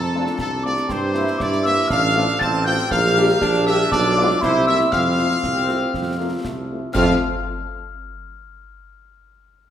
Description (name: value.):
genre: military-style march for wind band.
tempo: 119 BPM.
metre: 2/4.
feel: straight.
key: F major.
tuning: A4 = 439 Hz.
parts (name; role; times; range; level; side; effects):
bright trumpet section; melody; 0.0-7.2 s; A4 to A5; -24 LUFS; equal; none.
glockenspiel with rubber mallets; second line; 0.0-7.2 s; A5 to A6; -27 LUFS; left 2 dB; none.
hollow wooden piccolo; second line; 0.0-7.2 s; A5 to A6; -27 LUFS; left 4 dB; none.
mellow tuba; bass; 0.0-7.2 s; A1 to G2; -21 LUFS; right 2 dB; none.
dark French horn section; accompaniment; 0.1-7.2 s; F3 to G4; -27 LUFS; left 4 dB; none.
warm trombone section; sustained chords; 0.1-7.2 s; A3 to E4; -25 LUFS; right 2 dB; none.
concert snare drum, concert bass drum and clash cymbals; drums; 0.3-7.2 s; none; -31 LUFS; left 1 dB; none.
room: wet recital hall reverb, RT60 1.5 s.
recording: none.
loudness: -17 LUFS.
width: side -10 dB against mid.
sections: 0.0-7.0 A section; 7.0-8.0 B section.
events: none.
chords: 0.0 F; 0.9 C7/G; 1.9 F/A; 2.9 Gm7/Bb; 3.9 Bdim7; 4.4 C7; 4.9 F.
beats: 0.39 | 0.90 1.40 | 1.91 2.41 | 2.92 3.42 | 3.93 4.43 | 4.93 5.44 | 5.94 6.45 | 6.95.